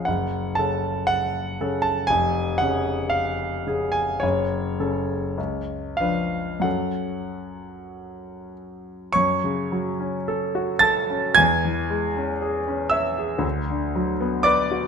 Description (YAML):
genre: classical, romantic nocturne for solo piano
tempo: 46-61 BPM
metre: 4/4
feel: rubato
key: F# minor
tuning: A4 = 440 Hz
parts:
  - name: warm grand piano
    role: solo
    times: 0.0-14.9 s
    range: E#1 to A6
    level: -21 LUFS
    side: equal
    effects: none
room: moderate recital hall reverb, RT60 1.5 s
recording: close, detailed microphones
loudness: -21 LUFS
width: side -6 dB against mid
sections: 0.0-9.2 A section; 9.2-14.9 A section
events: none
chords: 0.1 F#m; 2.1 C#/E#; 4.2 F#m; 5.4 C#7b9; 6.6 F#m; 11.4 C#m/E; 13.4 Bm/D